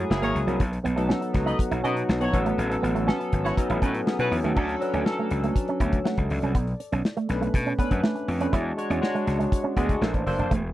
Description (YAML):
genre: polished 1980s jazz-funk pop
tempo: 121 BPM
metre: 4/4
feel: straight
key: unclear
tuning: A4 = 439 Hz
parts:
  - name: barky tine electric piano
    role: accompaniment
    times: 0.0-10.5 s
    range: F#3 to A5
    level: -27 LUFS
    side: left 1 dB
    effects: analog chorus
  - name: gritty slap bass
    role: bass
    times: 0.0-10.7 s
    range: E1 to B2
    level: -27 LUFS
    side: equal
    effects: overdrive
  - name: modern studio drum kit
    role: drums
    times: 0.1-10.6 s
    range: crash cymbal, hi-hat, kick drum, snare drum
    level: -25 LUFS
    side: equal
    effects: none
  - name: mellow horn section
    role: second line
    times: 0.2-4.4 s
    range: E4 to D#5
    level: -29 LUFS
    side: left 2 dB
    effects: none
  - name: electric guitar with an envelope filter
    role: riff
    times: 0.2-10.6 s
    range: F#3 to E4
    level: -29 LUFS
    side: right 5 dB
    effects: lush chorus
room: little or no reverb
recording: dry, close 1970s-style studio recording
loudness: -22 LUFS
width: side -14 dB against mid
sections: 0.0-4.6 A section; 4.6-10.7 B section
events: none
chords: 0.1 F#9; 0.6 B7; 2.3 A69; 4.6 Dmaj7; 6.5 Bm9; 8.5 E13; 10.0 A#maj9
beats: 0.10 | 0.60 1.09 1.59 2.09 | 2.58 3.08 3.57 4.07 | 4.57 5.06 5.56 6.05 | 6.55 7.04 7.54 8.04 | 8.53 9.03 9.52 10.02 | 10.51